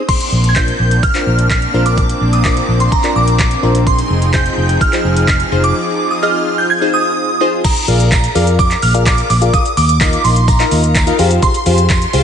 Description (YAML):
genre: dance-pop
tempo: 127 BPM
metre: 4/4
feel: straight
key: unclear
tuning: A4 = 440 Hz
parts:
  - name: wavetable chord stab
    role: accompaniment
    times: 0.0-12.2 s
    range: D4 to F5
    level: -18 LUFS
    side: left 2 dB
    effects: sidechain pumping, slapback echo
  - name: shimmering bell with halo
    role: melody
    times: 0.1-12.2 s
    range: Bb5 to Ab6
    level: -17 LUFS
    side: right 2 dB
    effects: ensemble chorus, ping-pong delay, slapback echo
  - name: soft supersaw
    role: sustained chords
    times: 0.1-7.6 s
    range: F3 to G5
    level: -22 LUFS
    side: equal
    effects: sidechain pumping
  - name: smooth R&B drum kit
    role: drums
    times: 0.1-12.2 s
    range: crash cymbal, handclaps, hi-hat, kick drum, shaker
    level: -16 LUFS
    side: equal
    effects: none
  - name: vintage muted fingered electric bass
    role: bass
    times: 0.3-12.2 s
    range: F1 to F2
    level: -14 LUFS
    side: equal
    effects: sidechain pumping
  - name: tambourine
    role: percussion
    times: 7.6-12.2 s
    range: none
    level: -32 LUFS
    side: right 7 dB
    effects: none
room: moderate lush hall reverb, RT60 2.4 s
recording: big arena sound, nothing above 10.3 kHz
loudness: -11 LUFS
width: side -8 dB against mid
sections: 0.1-7.6 A section; 7.6-12.2 B section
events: none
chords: 0.1 Bbadd9; 3.9 Fm7; 7.6 Bb7; 9.5 Ebsus2; 11.2 Fmadd9